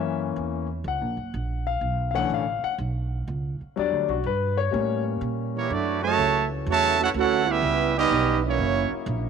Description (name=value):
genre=jazz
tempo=124 BPM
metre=4/4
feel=swing 67% on 8ths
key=D major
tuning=A4 = 440 Hz
part: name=clear concert grand piano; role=accompaniment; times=0.0-5.7 s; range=D3 to F#5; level=-26 LUFS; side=left 10 dB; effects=none
part: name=upright bass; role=bass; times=0.0-9.3 s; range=F#1 to Bb2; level=-29 LUFS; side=right 2 dB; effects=none
part: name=warm trombone section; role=second line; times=5.5-8.9 s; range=C#3 to F#4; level=-26 LUFS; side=right 14 dB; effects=none
part: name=clear trumpet section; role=melody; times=5.6-8.9 s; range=A3 to A5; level=-23 LUFS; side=right 4 dB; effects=none
part: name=dark trombone section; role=sustained chords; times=5.7-9.3 s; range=C#3 to E4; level=-36 LUFS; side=left 10 dB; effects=stereo widening
room=light reverb, studio reverb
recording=1960s-style stereo with parts hard left and right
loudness=-22 LUFS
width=side -6 dB against mid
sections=0.0-5.7 A section; 5.7-9.3 B section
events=grand piano solo 0.0-5.7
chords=0.0 F#7; 1.8 Bm11; 3.8 Em7; 4.7 A7b9; 5.7 Dmaj9; 7.6 C#m7b5; 8.6 F#7